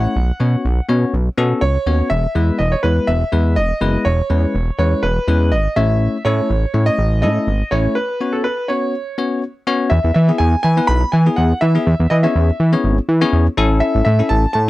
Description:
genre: dance-pop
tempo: 123 BPM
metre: 4/4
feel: straight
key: E major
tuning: A4 = 436 Hz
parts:
  - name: clear concert grand piano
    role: melody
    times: 0.0-14.7 s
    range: A4 to B5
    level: -20 LUFS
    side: right 1 dB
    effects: slapback echo
  - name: bell-like tine electric piano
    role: accompaniment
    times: 0.0-14.4 s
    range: G#3 to C#5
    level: -19 LUFS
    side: left 4 dB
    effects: none
  - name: fat analog bass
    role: bass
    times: 0.0-14.7 s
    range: E1 to E3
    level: -15 LUFS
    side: equal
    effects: none
room: little or no reverb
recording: dry, close 1970s-style studio recording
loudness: -14 LUFS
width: side -17 dB against mid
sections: 0.0-9.9 A section; 9.9-14.7 B section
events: break 8.0-9.9; drop 9.9-14.7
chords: 0.2 Bsus2; 2.1 E; 4.1 C#m7/E; 5.8 A; 8.0 Bsus2; 9.9 E; 11.9 C#m7/E; 13.6 A

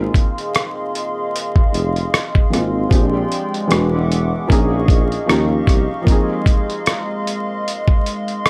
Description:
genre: lo-fi hip hop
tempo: 76 BPM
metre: 4/4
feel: swing 57% on 16ths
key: Ab major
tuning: A4 = 436 Hz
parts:
  - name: felt-muted upright piano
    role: accompaniment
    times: 0.0-8.5 s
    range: Eb3 to Ab4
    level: -24 LUFS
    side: equal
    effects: none
  - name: hollow soft pad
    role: sustained chords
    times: 0.0-8.5 s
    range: Ab3 to D6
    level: -26 LUFS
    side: equal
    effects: chorus
  - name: mellow tuba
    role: bass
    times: 0.0-5.9 s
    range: E1 to Eb2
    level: -22 LUFS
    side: equal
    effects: none
  - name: dusty soul sampler-style drum kit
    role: drums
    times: 0.1-8.5 s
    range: hi-hat, kick drum, rim click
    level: -18 LUFS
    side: equal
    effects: none
room: light reverb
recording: vinyl crackle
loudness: -18 LUFS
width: mono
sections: 0.0-8.5 A section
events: none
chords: 0.0 Ab6; 2.9 Bb13; 3.7 E9; 4.5 Eb9sus4/Bb; 5.3 Eb9; 6.1 Ab6

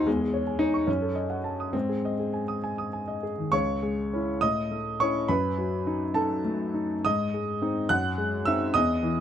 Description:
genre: classical, romantic character piece for solo piano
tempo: 63-77 BPM (dotted quarters)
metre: 6/8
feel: rubato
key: unclear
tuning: A4 = 441 Hz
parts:
  - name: clear grand piano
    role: solo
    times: 0.0-9.2 s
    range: C#2 to F#6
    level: -25 LUFS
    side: equal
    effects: none
room: light reverb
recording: close, detailed microphones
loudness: -25 LUFS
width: side -9 dB against mid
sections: 0.0-3.5 A section; 3.5-9.2 B section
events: none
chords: 0.1 C#m/E; 0.9 D#dim/F#; 1.7 G#; 3.5 C#m; 4.4 A; 5.3 D#dim/F#; 7.0 G#; 7.9 G#7/F#

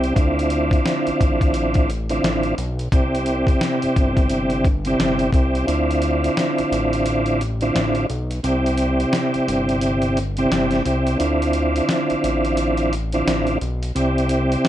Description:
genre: hip hop, boom-bap hip-hop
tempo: 87 BPM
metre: 4/4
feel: swing 62% on 16ths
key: D minor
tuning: A4 = 440 Hz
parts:
  - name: tonewheel organ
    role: accompaniment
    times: 0.0-14.7 s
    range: C3 to D5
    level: -19 LUFS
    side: right 1 dB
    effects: chorus vibrato, stopped rotary speaker, cassette tape, high-pass filter, low-pass filter
  - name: fat analog bass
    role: bass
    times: 0.0-14.6 s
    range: G1 to D2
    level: -24 LUFS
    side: equal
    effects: none
  - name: dusty soul sampler-style drum kit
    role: drums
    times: 0.0-14.7 s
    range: hi-hat, kick drum, snare drum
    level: -23 LUFS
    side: equal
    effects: none
room: moderate small room reverb, RT60 0.5 s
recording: none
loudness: -17 LUFS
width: side -12 dB against mid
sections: 0.0-14.7 A section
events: kick muted 5.7-14.7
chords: 0.2 Dm7; 2.9 Cadd9; 5.7 Dm7; 8.4 Cadd9; 11.2 Dm7; 14.0 Cadd9

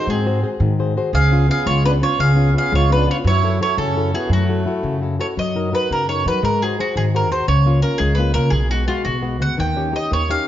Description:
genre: italian folk, Italian serenade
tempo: 114 BPM (dotted quarters)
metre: 6/8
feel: straight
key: F# minor, F# major from 5.4 s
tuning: A4 = 442 Hz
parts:
  - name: bowl-back mandolin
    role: melody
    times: 0.0-10.5 s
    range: E#4 to G5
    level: -21 LUFS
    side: right 2 dB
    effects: none
  - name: accordion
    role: second line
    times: 0.0-5.0 s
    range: A3 to G#4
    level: -26 LUFS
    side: right 5 dB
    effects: none
  - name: flamenco guitar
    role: accompaniment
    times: 0.0-10.5 s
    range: B2 to B#4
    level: -22 LUFS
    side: left 4 dB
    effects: none
  - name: upright bass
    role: bass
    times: 0.1-10.3 s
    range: B1 to F#3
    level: -19 LUFS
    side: equal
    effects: none
room: moderate recital hall reverb, RT60 1.5 s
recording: dark, warm production, nothing above 7.5 kHz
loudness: -16 LUFS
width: side -12 dB against mid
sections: 0.0-5.4 A section; 5.4-10.5 B section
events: none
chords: 0.0 G#7; 1.1 C#7; 3.2 F#m7; 5.4 F#6; 6.4 G#7; 7.5 C#6; 8.5 G#m7/B; 9.6 D#7

